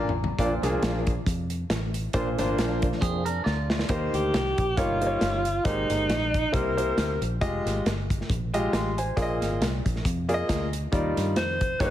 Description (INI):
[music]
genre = uptempo gospel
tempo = 136 BPM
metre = 4/4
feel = swing 55% on 8ths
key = unclear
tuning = A4 = 435 Hz
[part]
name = clear concert grand piano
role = accompaniment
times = 0.0-11.9 s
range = G2 to C6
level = -28 LUFS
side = left 1 dB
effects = none
[part]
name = fingered electric bass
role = bass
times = 0.0-11.9 s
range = F1 to G2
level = -30 LUFS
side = equal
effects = none
[part]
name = modern studio drum kit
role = drums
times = 0.1-11.9 s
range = hi-hat, kick drum, snare drum, toms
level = -29 LUFS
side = equal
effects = none
[part]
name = tonewheel organ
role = sustained chords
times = 0.4-3.2 s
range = F3 to D4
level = -33 LUFS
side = right 2 dB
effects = slow rotary speaker
[part]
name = clean electric guitar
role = second line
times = 3.0-3.9 s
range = C4 to D5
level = -32 LUFS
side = right 5 dB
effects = none
[part]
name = clear alto saxophone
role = melody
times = 4.1-7.2, 11.4-11.9 s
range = Eb4 to C5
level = -26 LUFS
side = equal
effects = slapback echo
[sound]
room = light reverb, small room ambience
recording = heavily compressed radio sound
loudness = -24 LUFS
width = side -12 dB against mid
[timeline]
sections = 0.4-3.9 A section; 3.9-11.9 B section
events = grand piano fill 0.0-0.4; drum fill 0.0-0.4, 3.5-3.9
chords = 0.4 Bb; 3.9 Eb6; 4.8 Eb7/G; 5.7 Abmaj9; 6.5 C7; 7.4 Fm9; 9.2 Bb7sus4; 10.9 Ebmaj9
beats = | 0.38 0.82 1.26 1.70 | 2.14 2.58 3.02 3.46 | 3.90 4.33 4.77 5.21 | 5.65 6.09 6.53 6.97 | 7.41 7.85 8.29 8.73 | 9.17 9.61 10.04 10.48 | 10.92 11.36 11.80